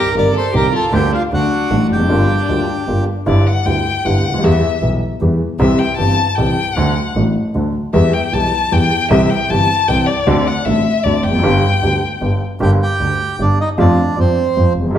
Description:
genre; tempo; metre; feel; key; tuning
tango; 154 BPM; 3/4; rubato; G minor, G major from 3.3 s; A4 = 439 Hz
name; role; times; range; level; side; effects
bandoneon; melody; 0.0-3.0, 12.6-14.7 s; C4 to D6; -19 LUFS; right 4 dB; none
warm violin; second line; 0.0-12.4 s; D4 to A5; -18 LUFS; left 5 dB; none
warm upright piano; accompaniment; 0.1-15.0 s; G1 to G4; -16 LUFS; equal; none
dark double bass; bass; 0.2-15.0 s; F1 to F2; -18 LUFS; equal; none
room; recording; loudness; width
wet large studio reverb, RT60 1.4 s; heard from further back in the room; -13 LUFS; side -10 dB against mid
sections
0.0-3.3 A section; 3.3-12.6 B section; 12.6-15.0 A section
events
violin solo 3.3-12.6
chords
0.0 Cm7; 0.9 Gm/D; 1.3 D; 2.1 Gm7; 3.3 G6; 4.4 Em; 5.6 C; 6.8 D; 7.9 Em; 9.1 C; 10.3 D7; 11.4 G; 12.6 Gm; 13.8 Dm7/F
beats
0.15 0.54 | 0.93 1.32 1.71 | 2.09 2.48 2.88 | 3.27 3.66 4.05 | 4.43 4.82 5.21 | 5.60 5.99 6.38 | 6.76 7.16 7.54 | 7.93 8.33 8.72 | 9.11 9.50 9.88 | 10.27 10.66 11.05 | 11.43 11.82 12.21 | 12.61 13.00 13.39 | 13.78 14.17 14.56 | 14.95

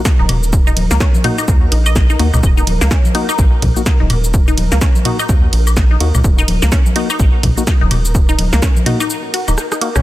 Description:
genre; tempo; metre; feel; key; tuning
minimal techno; 126 BPM; 4/4; swing 60% on 16ths; Eb minor; A4 = 440 Hz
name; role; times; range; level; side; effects
flickering grainy texture; texture; 0.0-10.0 s; Bb4; -29 LUFS; right 2 dB; built-in reverb, sidechain pumping
electronic kick drum; drums; 0.1-8.7 s; none; -13 LUFS; equal; none
punchy analog drum machine; drums; 0.1-10.0 s; hi-hat, ride cymbal, rim click, shaker, snare drum; -21 LUFS; right 1 dB; none
resonant blip pluck; riff; 0.2-10.0 s; Bb3 to Eb5; -22 LUFS; left 2 dB; phaser, cassette tape, sidechain pumping, digital delay
rubbery square bass; bass; 0.2-10.0 s; Eb1 to Eb2; -15 LUFS; equal; sidechain pumping
electronic congas, toms and woodblock; percussion; 0.2-10.0 s; none; -21 LUFS; left 2 dB; none
percussive organ stab; stabs; 1.2-9.9 s; Bb3 to Gb4; -24 LUFS; left 3 dB; chorus, tape echo
room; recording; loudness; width
digital ambience; dense, heavily limited modern master; -11 LUFS; side -16 dB against mid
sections
0.0-10.0 A section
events
break 9.1-10.0; drum fill 9.6-10.0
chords
0.0 Ebm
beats
0.05 | 0.53 1.00 1.48 1.96 | 2.43 2.91 3.38 3.86 | 4.34 4.81 5.29 5.77 | 6.24 6.72 7.20 7.67 | 8.15 8.62 9.10 9.58

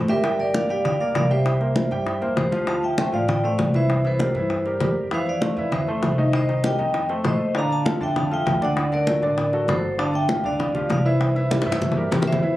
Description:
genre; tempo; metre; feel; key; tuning
latin, salsa; 197 BPM; 4/4; straight; unclear; A4 = 441 Hz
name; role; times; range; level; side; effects
clear grand piano; accompaniment; 0.0-12.6 s; D3 to G5; -25 LUFS; equal; none
upright bass; bass; 0.0-12.6 s; G1 to G2; -26 LUFS; equal; none
vibraphone with medium hard mallets; melody; 0.1-12.6 s; G4 to Bb5; -24 LUFS; equal; none
bongos; percussion; 0.1-12.4 s; none; -27 LUFS; left 2 dB; none
congas; percussion; 0.1-12.6 s; none; -27 LUFS; equal; none
room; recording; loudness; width
moderate studio reverb, RT60 0.5 s; recorded on a phone in the room, club reverb; -19 LUFS; side -15 dB against mid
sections
0.0-2.7 A section; 2.7-12.4 B section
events
drum fill 11.5-12.4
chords
0.2 Gm; 1.5 C7; 2.7 Dm7; 3.9 C7; 5.1 Fmaj7; 6.3 Cm7; 6.9 F7; 7.6 Bbmaj7; 8.8 D7; 10.0 G5; 11.2 C7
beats
| 0.24 0.54 0.85 1.15 | 1.46 1.76 2.06 2.37 | 2.67 2.98 3.28 3.59 | 3.89 4.20 4.50 4.81 | 5.11 5.42 5.72 6.03 | 6.33 6.64 6.94 7.25 | 7.55 7.86 8.16 8.47 | 8.77 9.08 9.38 9.69 | 9.99 10.29 10.60 10.90 | 11.21 11.51 11.82 12.12 | 12.43

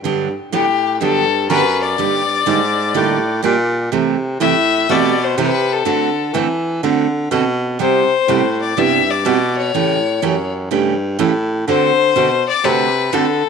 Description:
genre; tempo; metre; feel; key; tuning
country, western swing; 124 BPM; 4/4; swing 67% on 8ths; unclear; A4 = 442 Hz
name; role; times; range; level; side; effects
picked steel-string acoustic guitar; accompaniment; 0.0-13.3 s; C3 to A4; -19 LUFS; right 12 dB; none
warm baritone saxophone; bass; 0.0-13.5 s; F#2 to E3; -19 LUFS; equal; none
bright fiddle; melody; 0.5-13.5 s; G4 to E5; -17 LUFS; left 9 dB; none
room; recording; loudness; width
light reverb, small room ambience; 1960s-style stereo with parts hard left and right; -14 LUFS; side -6 dB against mid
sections
0.0-13.5 A section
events
none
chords
0.0 Gmaj7; 2.0 Ebmaj7/G; 3.9 C6; 5.9 D9; 7.8 Cmaj7; 9.7 A7; 11.7 D7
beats
| 0.04 0.53 1.01 1.50 | 1.98 2.47 2.95 3.44 | 3.92 4.41 4.89 5.38 | 5.86 6.34 6.83 7.31 | 7.80 8.28 8.77 9.25 | 9.74 10.22 10.71 11.19 | 11.67 12.16 12.64 13.13

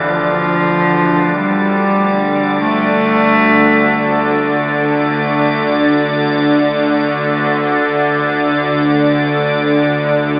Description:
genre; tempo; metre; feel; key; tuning
dark ambient drone; free time; none; none; D minor; A4 = 440 Hz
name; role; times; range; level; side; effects
rich cello; melody; 0.0-4.5 s; F3 to A3; -18 LUFS; equal; tape echo
bright grand piano; arpeggios; 0.0-10.4 s; G2 to D4; -27 LUFS; equal; none
bowed-like drone; drone; 0.0-10.4 s; D2 to D3; -17 LUFS; equal; built-in reverb
icy glass pad; texture; 0.0-10.4 s; D5; -22 LUFS; equal; chorus, built-in reverb, phaser
room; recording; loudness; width
wet cathedral reverb, RT60 5.2 s; in a vast, echoing space, AM radio sound; -14 LUFS; mono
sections
0.0-10.4 A section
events
fade-in on ambient pad 0.0-10.4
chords
none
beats
free time

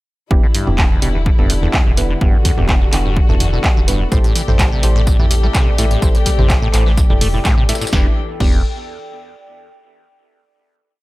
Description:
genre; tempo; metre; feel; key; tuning
acid house; 126 BPM; 4/4; straight; E minor; A4 = 440 Hz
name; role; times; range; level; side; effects
dark chamber string section; sustained chords; 0.3-8.1 s; C3 to G4; -26 LUFS; left 3 dB; sidechain pumping
liquid acid bass; riff; 0.3-8.6 s; E2 to A3; -22 LUFS; equal; chorus, tube saturation, tape echo
percussive organ stab; stabs; 0.3-8.6 s; B3 to E5; -26 LUFS; right 2 dB; chorus, tape echo
warm sub bass; bass; 0.3-8.6 s; E1 to A2; -18 LUFS; equal; tube saturation, sidechain pumping
electronic kick drum; drums; 0.3-8.5 s; none; -14 LUFS; equal; none
warbly tape-like pad; texture; 1.4-9.8 s; A4 to G5; -29 LUFS; left 3 dB; chorus, built-in reverb, phaser, sidechain pumping
punchy analog drum machine; drums; 0.5-8.5 s; crash cymbal, handclaps, hi-hat, snare drum, toms; -21 LUFS; equal; none
breakbeat sampler-style drum kit; drums; 4.1-7.9 s; hi-hat, snare drum, tambourine; -29 LUFS; left 1 dB; high-pass filter on perc, high-pass filter on hats, high-pass filter on snare
room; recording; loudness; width
little or no reverb; none; -12 LUFS; side -19 dB against mid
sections
0.3-7.9 groove; 7.9-9.8 final chord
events
none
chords
0.3 Em7; 4.1 Am7; 7.9 Em7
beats
| 0.31 0.79 1.26 1.74 | 2.21 2.69 3.17 3.64 | 4.12 4.59 5.07 5.55 | 6.02 6.50 6.97 7.45 | 7.93 8.40 8.88 9.36

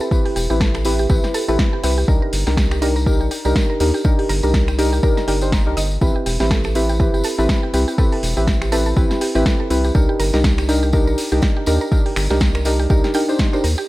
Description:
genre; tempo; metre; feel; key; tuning
deep house; 122 BPM; 4/4; swing 57% on 16ths; unclear; A4 = 442 Hz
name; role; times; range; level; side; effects
mallet-like synth pluck; arpeggios; 0.0-13.8 s; G4 to Bb5; -28 LUFS; right 3 dB; chorus, sidechain pumping, analog delay
deep mellow chord stab; stabs; 0.0-13.6 s; C4 to C5; -20 LUFS; equal; chorus, vintage 12-bit sampler grit, sidechain pumping, analog delay
tambourine; percussion; 0.0-13.9 s; none; -32 LUFS; left 2 dB; none
electronic kick drum; drums; 0.1-13.5 s; none; -17 LUFS; equal; overdrive, studio reverb
deep house drum kit; drums; 0.3-13.8 s; finger snaps, hi-hat, snare drum; -26 LUFS; equal; overdrive, studio reverb
round analog bass; bass; 0.4-13.8 s; E1 to Eb2; -20 LUFS; equal; tube saturation, sidechain pumping
room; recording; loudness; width
light reverb; none; -15 LUFS; side -18 dB against mid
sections
0.0-13.9 A section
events
drop 0.0-13.9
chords
0.0 Am7; 2.1 Cm7; 6.0 Am7; 9.9 Cm7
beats
| 0.11 0.61 1.10 1.59 | 2.08 2.57 3.06 3.56 | 4.05 4.54 5.03 5.52 | 6.02 6.51 7.00 7.49 | 7.98 8.47 8.97 9.46 | 9.95 10.44 10.93 11.43 | 11.92 12.41 12.90 13.39

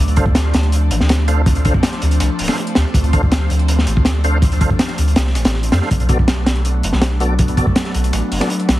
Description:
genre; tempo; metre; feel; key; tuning
drum and bass, jungle; 162 BPM; 4/4; straight; unclear; A4 = 440 Hz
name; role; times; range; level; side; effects
airy breathy pad; sustained chords; 0.0-8.8 s; F3 to D4; -23 LUFS; equal; chorus, phaser
soft dub sub bass; bass; 0.0-8.8 s; D1 to F2; -16 LUFS; equal; none
crunchy breakbeat drum kit; drums; 0.1-8.8 s; hi-hat, kick drum, snare drum; -17 LUFS; equal; none
tonewheel organ; stabs; 0.2-8.5 s; B3 to F5; -25 LUFS; equal; overdrive, chorus vibrato, slow rotary speaker, vintage 12-bit sampler grit, dub echo
breakbeat sampler-style drum kit; drums; 0.2-8.8 s; hi-hat, snare drum; -30 LUFS; left 1 dB; high-pass filter on hats, high-pass filter on snare, high-pass filter on room
room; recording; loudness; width
light reverb, studio reverb; heavily compressed radio sound, vinyl crackle; -13 LUFS; side -16 dB against mid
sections
0.0-8.8 A section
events
none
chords
0.0 Dm7; 5.9 Bm7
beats
0.35 0.72 1.09 | 1.46 1.83 2.20 2.57 | 2.94 3.31 3.68 4.05 | 4.42 4.79 5.17 5.54 | 5.91 6.28 6.65 7.02 | 7.39 7.76 8.13 8.50

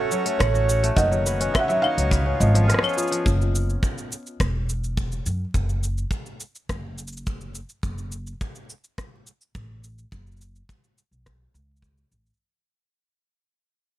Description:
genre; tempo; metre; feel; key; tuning
folktronica; 105 BPM; 4/4; straight; unclear; A4 = 440 Hz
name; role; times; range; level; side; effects
felt-muted upright piano; melody; 0.0-2.6 s; A4 to F#5; -26 LUFS; right 3 dB; ping-pong delay
celesta; second line; 0.0-3.3 s; E#4 to E#6; -32 LUFS; equal; ping-pong delay
accordion; sustained chords; 0.0-3.3 s; A3 to C#5; -30 LUFS; right 1 dB; none
kora; arpeggios; 0.0-4.8 s; D#3 to F#5; -28 LUFS; left 3 dB; ping-pong delay
organic electronic drum kit; drums; 0.1-12.4 s; claves, hi-hat, rim click, shaker; -29 LUFS; left 2 dB; none
upright bass; bass; 0.4-12.3 s; E1 to F#2; -24 LUFS; equal; none
kick drum; drums; 0.4-11.9 s; none; -27 LUFS; equal; none
room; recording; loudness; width
light reverb; vinyl crackle; -21 LUFS; side -14 dB against mid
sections
0.0-3.3 A section; 3.3-12.4 B section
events
break 2.7-3.3; fade-out 3.3-12.4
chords
0.0 F#m; 1.0 Badd9/F#; 2.1 C#7; 3.3 Esus2; 5.5 N.C.; 7.8 F#m; 10.1 Bsus2/F#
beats
0.40 | 0.97 1.54 2.12 2.69 | 3.26 3.83 4.40 4.97 | 5.54 6.12 6.69 7.26 | 7.83 8.40 8.97 9.54 | 10.12 10.69 11.26 11.83

